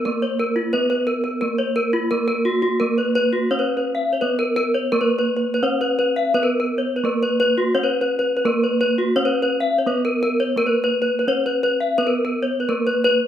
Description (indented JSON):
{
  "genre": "gamelan",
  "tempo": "85 BPM",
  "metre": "4/4",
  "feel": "straight",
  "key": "Bb pelog",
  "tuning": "A4 = 439 Hz",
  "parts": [
    { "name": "gamelan-type bronze metallophone", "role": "melody", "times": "0.0-13.3 s", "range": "Bb3 to C4+50c", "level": "-24 LUFS", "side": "right 3 dB", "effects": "plate reverb" },
    { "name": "gamelan-type bronze metallophone", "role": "arpeggios", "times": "0.1-13.1 s", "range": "F4-45c to F5-45c", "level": "-19 LUFS", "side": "left 1 dB", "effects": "plate reverb" }
  ],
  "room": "wet studio reverb, RT60 0.6 s",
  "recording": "rough home demo mix",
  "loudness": "-18 LUFS",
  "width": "side -10 dB against mid",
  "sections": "0.0-2.8 A section; 2.8-13.3 B section",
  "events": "none",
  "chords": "none",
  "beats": "| 0.07 0.73 1.42 2.11 | 2.81 3.51 4.22 4.92 | 5.63 6.34 7.04 7.75 | 8.45 9.16 9.87 10.57 | 11.28 11.98 12.69"
}